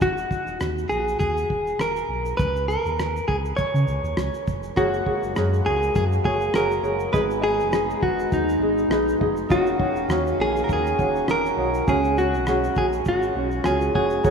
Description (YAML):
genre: acoustic pop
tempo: 101 BPM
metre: 4/4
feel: swing 55% on 16ths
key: unclear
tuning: A4 = 440 Hz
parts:
  - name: direct-recorded clean electric guitar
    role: melody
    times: 0.0-14.3 s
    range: D#4 to C#5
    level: -23 LUFS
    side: equal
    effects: spring reverb, slapback echo
  - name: sub bass with octave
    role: bass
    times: 0.0-14.3 s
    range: D#1 to C#3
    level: -28 LUFS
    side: equal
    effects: none
  - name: cloth-damped thuddy drum kit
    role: drums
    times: 0.0-14.3 s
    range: kick drum, rim click, shaker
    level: -29 LUFS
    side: equal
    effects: none
  - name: ukulele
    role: accompaniment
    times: 4.8-14.3 s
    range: C#4 to D#5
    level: -25 LUFS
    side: right 1 dB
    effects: none
  - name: pedal harmonium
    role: sustained chords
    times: 4.8-14.2 s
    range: D#3 to E#5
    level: -29 LUFS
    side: equal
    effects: none
room: wet cathedral reverb, RT60 6.6 s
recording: in a vast, echoing space, studio ambience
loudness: -20 LUFS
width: side -6 dB against mid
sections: 0.0-14.3 A section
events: none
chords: 0.0 D#m; 2.4 C#; 4.8 F#add9; 7.1 G#m; 9.5 D#m7; 11.9 C#sus4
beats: | 0.02 0.61 1.21 1.80 | 2.39 2.99 3.58 4.17 | 4.77 5.36 5.95 6.55 | 7.14 7.73 8.32 8.92 | 9.51 10.10 10.70 11.29 | 11.88 12.47 13.07 13.66 | 14.25